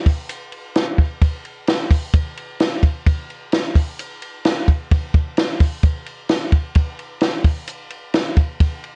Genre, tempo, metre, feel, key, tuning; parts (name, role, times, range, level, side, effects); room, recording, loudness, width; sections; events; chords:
indie pop; 130 BPM; 4/4; straight
compact cocktail drum kit; drums; 0.1-8.9 s; hi-hat, kick drum, ride cymbal, snare drum; -19 LUFS; equal; vintage 12-bit sampler grit, gated reverb
light reverb; cassette tape; -20 LUFS; mono
0.0-9.0 A section